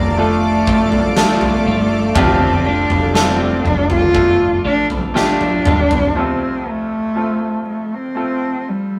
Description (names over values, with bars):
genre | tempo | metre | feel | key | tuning
pop ballad | 60 BPM | 4/4 | straight | unclear | A4 = 439 Hz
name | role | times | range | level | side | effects
dark cello | melody | 0.0-9.0 s | G3 to F4 | -20 LUFS | equal | none
bright grand piano | accompaniment | 0.0-9.0 s | F2 to C5 | -23 LUFS | equal | none
lush unison pad | sustained chords | 0.0-6.1 s | A4 to D6 | -27 LUFS | equal | chorus
twelve-string electric guitar | arpeggios | 0.0-6.2 s | F2 to F4 | -27 LUFS | equal | none
woody fretless electric bass | bass | 0.0-6.1 s | F1 to A1 | -25 LUFS | equal | none
huge arena drum kit | drums | 0.7-6.1 s | kick drum, snare drum, toms | -22 LUFS | equal | none
room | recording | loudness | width
moderate stone room reverb, RT60 1.2 s | rough rehearsal-room recording, tube saturation | -16 LUFS | mono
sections
0.0-6.2 A section; 6.2-9.0 B section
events
drum fill 5.2-6.2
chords
0.0 Dm/F; 6.2 F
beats
0.18 1.17 | 2.16 3.15 4.15 5.15 | 6.16 7.16 8.16